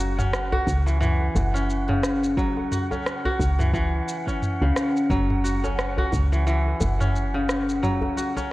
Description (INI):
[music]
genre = organic downtempo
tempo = 88 BPM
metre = 4/4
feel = swing 58% on 16ths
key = unclear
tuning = A4 = 443 Hz
[part]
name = kora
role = arpeggios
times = 0.0-8.5 s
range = C#3 to F#4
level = -25 LUFS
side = equal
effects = tape echo
[part]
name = woody FM bass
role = bass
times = 0.0-8.1 s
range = F#1 to C#2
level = -24 LUFS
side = equal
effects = none
[part]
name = afro-pop drum kit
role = drums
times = 0.0-8.5 s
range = rim click, shaker, toms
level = -28 LUFS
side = equal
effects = studio reverb
[part]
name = wind-like tuned noise texture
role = texture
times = 0.0-8.5 s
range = F#5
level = -35 LUFS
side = right 2 dB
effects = built-in reverb
[part]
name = djembe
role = percussion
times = 0.2-8.5 s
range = none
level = -31 LUFS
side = equal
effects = none
[part]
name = electronic kick drum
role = drums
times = 0.7-6.3 s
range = none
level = -28 LUFS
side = equal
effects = studio reverb
[sound]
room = moderate lush hall reverb, RT60 2.2 s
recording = worn, warbling old tape, cassette tape, warbly pitch drift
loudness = -21 LUFS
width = side -18 dB against mid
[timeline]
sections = 0.0-8.5 A section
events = kick drops out 7.8-8.5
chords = 0.0 F#5